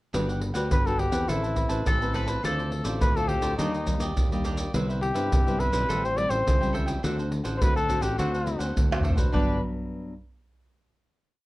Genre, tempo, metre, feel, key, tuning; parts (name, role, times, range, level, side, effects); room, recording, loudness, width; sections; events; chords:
samba and choro; 104 BPM; 4/4; straight; G major; A4 = 438 Hz
cavaquinho; accompaniment; 0.1-9.6 s; D4 to A5; -35 LUFS; right 2 dB
nylon-string guitar; accompaniment; 0.1-10.1 s; G2 to B4; -32 LUFS; left 2 dB
modern bright fingered electric bass; bass; 0.1-9.6 s; G1 to G2; -30 LUFS; equal; tube saturation
maracas, surdo, pandeiro and tamborim; percussion; 0.1-9.5 s; -27 LUFS; right 1 dB
breathy trumpet; melody; 0.7-9.6 s; D4 to D5; -28 LUFS; left 2 dB
mandolin; second line; 1.9-2.8, 9.3-9.6 s; A4 to B4; -31 LUFS; left 2 dB
light reverb; worn, warbling old tape, cassette tape, warbly pitch drift; -23 LUFS; side -18 dB against mid
0.1-9.3 A section; 9.3-11.4 final chord
drum fill 8.9-9.3
0.1 Gmaj7; 1.3 Amadd9; 2.4 Dm7; 3.6 Ebmaj7; 4.7 Cmaj7; 5.9 Am7; 7.0 D7; 9.3 Gmaj7